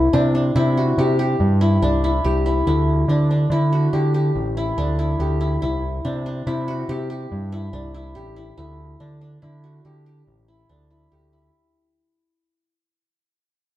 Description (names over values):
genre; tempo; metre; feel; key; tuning
progressive instrumental, band music in an uneven meter; 142 BPM; 7/4; straight; unclear; A4 = 440 Hz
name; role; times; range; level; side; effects
qanun; arpeggios; 0.0-12.7 s; D4 to G4; -22 LUFS; left 1 dB; none
overdriven picked electric bass; bass; 0.0-11.5 s; A1 to D3; -20 LUFS; equal; none
room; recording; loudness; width
wet large studio reverb, RT60 1.4 s; band playing live in one room; -18 LUFS; side -14 dB against mid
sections
0.0-11.5 A section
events
fade-out 0.0-11.5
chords
0.0 Cadd9; 2.7 Dsus4; 5.6 Cadd9; 8.6 Dsus4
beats
0.13 0.56 0.98 1.40 1.82 2.24 | 2.67 3.09 3.51 3.93 4.35 4.78 5.20 | 5.62 6.04 6.46 6.89 7.31 7.73 8.15 | 8.58 9.00 9.42 9.85 10.27 10.69 11.12